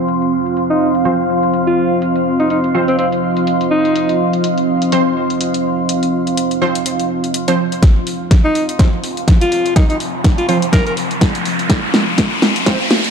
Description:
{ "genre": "bass house", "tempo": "124 BPM", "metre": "4/4", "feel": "swing 57% on 16ths", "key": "unclear", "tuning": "A4 = 441 Hz", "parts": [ { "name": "deep dark ambient pad", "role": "sustained chords", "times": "0.0-13.1 s", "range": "F3 to F5", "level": "-19 LUFS", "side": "right 1 dB", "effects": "chorus, built-in reverb, sidechain pumping" }, { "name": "airy breathy pad", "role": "texture", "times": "0.0-13.1 s", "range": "C4 to C6", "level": "-20 LUFS", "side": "equal", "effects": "chorus, phaser, sidechain pumping" }, { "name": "big-room dance drum kit", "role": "drums", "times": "0.1-13.1 s", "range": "hi-hat, snare drum", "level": "-18 LUFS", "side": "equal", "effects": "small room reverb" }, { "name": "clear alto saxophone", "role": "melody", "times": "0.7-4.2, 8.4-10.9 s", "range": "C4 to Bb4", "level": "-18 LUFS", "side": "left 1 dB", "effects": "tape echo" }, { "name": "orchestra-hit-like synth stab", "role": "stabs", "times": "1.1-12.8 s", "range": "F3 to C5", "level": "-20 LUFS", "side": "right 2 dB", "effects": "built-in reverb, sidechain pumping, tape echo" }, { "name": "electronic kick drum", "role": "drums", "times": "7.8-12.8 s", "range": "none", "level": "-12 LUFS", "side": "equal", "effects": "small room reverb" }, { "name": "riser", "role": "sound effects", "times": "9.0-13.1 s", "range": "none", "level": "-22 LUFS", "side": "left 1 dB", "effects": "none" } ], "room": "moderate lush hall reverb, RT60 2.5 s", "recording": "dark, warm production, high-pass filter, low-pass filter", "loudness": "-13 LUFS", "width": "side -6 dB against mid", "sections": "0.0-7.8 A section; 7.8-13.1 B section", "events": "filter sweep on synth stab 0.0-7.8, 7.8-13.1; filter sweep 0.0-7.8, 7.8-13.1; build-up 7.8-13.1; drum fill 7.8-13.1; filter sweep on ambient pad 7.8-13.1; riser 9.0-13.1", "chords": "0.0 F5" }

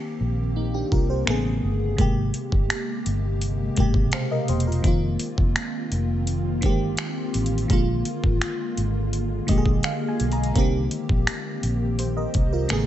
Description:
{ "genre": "contemporary R&B", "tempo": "84 BPM", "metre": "4/4", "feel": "straight", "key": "C minor", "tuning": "A4 = 440 Hz", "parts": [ { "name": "FM electric piano with soft pad layer", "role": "accompaniment", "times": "0.0-12.9 s", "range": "B2 to Bb5", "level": "-26 LUFS", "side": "equal", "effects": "chorus, phaser" }, { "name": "ethereal airy pad", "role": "sustained chords", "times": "0.0-12.9 s", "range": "C3 to G4", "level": "-31 LUFS", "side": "left 1 dB", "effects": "ensemble chorus, built-in reverb" }, { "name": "vintage muted fingered electric bass", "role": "bass", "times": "0.2-12.9 s", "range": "E1 to C2", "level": "-25 LUFS", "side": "equal", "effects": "none" }, { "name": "smooth R&B drum kit", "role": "drums", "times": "0.9-12.9 s", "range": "finger snaps, hi-hat, kick drum", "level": "-24 LUFS", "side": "equal", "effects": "none" } ], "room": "digital ambience", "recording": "nothing above 8.0 kHz", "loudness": "-21 LUFS", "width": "side -12 dB against mid", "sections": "0.0-12.9 A section", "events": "FM electric piano fill 9.1-10.6", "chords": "0.0 Cm7; 1.3 Amaj9; 2.0 Abmaj9; 4.8 F7sus4; 7.7 Bb7; 10.6 Cm7" }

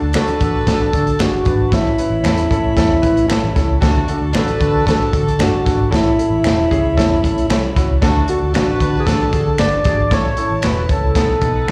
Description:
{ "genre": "uptempo 1960s-style soul", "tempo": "114 BPM", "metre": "4/4", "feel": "straight", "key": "A major", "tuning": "A4 = 441 Hz", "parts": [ { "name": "clear horn section", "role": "second line", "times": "0.0-9.5 s", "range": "A3 to B4", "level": "-31 LUFS", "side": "equal", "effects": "slapback echo" }, { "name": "warm chamber string section", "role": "second line", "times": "0.0-11.7 s", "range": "D#4 to B5", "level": "-32 LUFS", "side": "equal", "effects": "slapback echo" }, { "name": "warm upright piano", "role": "accompaniment", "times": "0.0-11.7 s", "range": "B3 to B5", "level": "-25 LUFS", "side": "equal", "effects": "slapback echo" }, { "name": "vintage muted fingered electric bass", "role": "bass", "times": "0.0-11.7 s", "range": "E1 to D3", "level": "-22 LUFS", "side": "equal", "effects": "none" }, { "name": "crunchy breakbeat drum kit", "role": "drums", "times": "0.1-11.7 s", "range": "hi-hat, kick drum, snare drum", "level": "-21 LUFS", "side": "equal", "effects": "none" }, { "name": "finger snap", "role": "percussion", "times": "0.1-11.7 s", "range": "none", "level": "-30 LUFS", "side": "equal", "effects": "none" }, { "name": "tonewheel organ", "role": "melody", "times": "0.2-11.7 s", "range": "E4 to D5", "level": "-20 LUFS", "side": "equal", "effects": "slow rotary speaker" }, { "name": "electric guitar through a small old amp", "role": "stabs", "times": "0.2-11.7 s", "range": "B3 to A4", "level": "-32 LUFS", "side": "equal", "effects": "none" } ], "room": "little or no reverb", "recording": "live gig heard through the venue's PA, club reverb", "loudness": "-16 LUFS", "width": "mono", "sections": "0.0-11.7 A section", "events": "upright piano fill 7.0-8.0", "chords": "0.0 D; 1.7 A; 3.8 D; 5.9 A; 8.0 D; 10.1 A; 11.2 B7" }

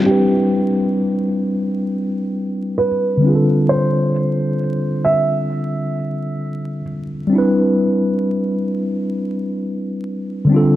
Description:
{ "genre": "hip hop", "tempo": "66 BPM", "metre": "4/4", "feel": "swing 58% on 16ths", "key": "C major", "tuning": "A4 = 438 Hz", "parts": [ { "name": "mellow tine electric piano", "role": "accompaniment", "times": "0.0-10.8 s", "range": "D3 to B4", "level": "-17 LUFS", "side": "equal", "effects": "medium stereo tremolo, low-pass filter" }, { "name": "felt-muted upright piano", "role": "melody", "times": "0.1-6.8 s", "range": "G4 to E5", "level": "-20 LUFS", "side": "right 2 dB", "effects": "low-pass filter, analog delay" } ], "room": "moderate plate reverb, RT60 2.9 s", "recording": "dark, warm production, vinyl crackle", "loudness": "-16 LUFS", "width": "side -14 dB against mid", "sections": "0.0-10.8 A section", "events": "filter sweep 0.0-10.8", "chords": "0.0 Cmaj9; 3.2 G9sus4/D; 7.3 Cmaj9" }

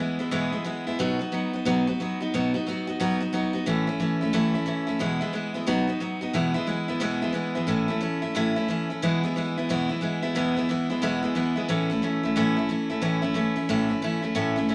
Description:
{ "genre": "rock", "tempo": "180 BPM", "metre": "4/4", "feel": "swing 63% on 8ths", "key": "E major", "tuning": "A4 = 444 Hz", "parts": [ { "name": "picked steel-string acoustic guitar", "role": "solo", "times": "0.0-14.7 s", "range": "E2 to F#4", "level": "-26 LUFS", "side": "equal", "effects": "none" } ], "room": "moderate large studio reverb, RT60 0.8 s", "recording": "none", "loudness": "-26 LUFS", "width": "mono", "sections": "0.0-6.3 A section; 6.3-14.7 B section", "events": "none", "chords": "0.0 E; 1.0 B; 3.7 A; 5.0 E; 5.7 B; 6.3 E; 7.7 A; 9.0 E; 11.7 A" }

